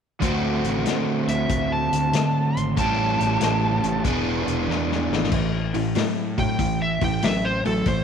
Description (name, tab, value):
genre	blues rock power trio and southern rock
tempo	94 BPM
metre	4/4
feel	swing 67% on 8ths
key	unclear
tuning	A4 = 440 Hz
part	crunchy overdriven guitar	riff	0.2-8.0 s	A2 to G#4	-23 LUFS	equal	none
part	fuzz fingered electric bass	bass	0.2-8.0 s	E1 to D3	-28 LUFS	right 1 dB	overdrive
part	vintage drum kit	drums	0.2-8.0 s	crash cymbal, hi-hat, kick drum, snare drum	-28 LUFS	left 4 dB	none
part	overdriven slide guitar	melody	1.3-8.0 s	A4 to C6	-26 LUFS	right 1 dB	none
room	light reverb, studio reverb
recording	1960s-style stereo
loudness	-20 LUFS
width	side -7 dB against mid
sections	0.2-5.3 A section; 5.3-8.0 B section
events	drum fill 4.7-5.3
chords	0.2 D7; 2.8 A7; 4.1 E7; 5.3 A5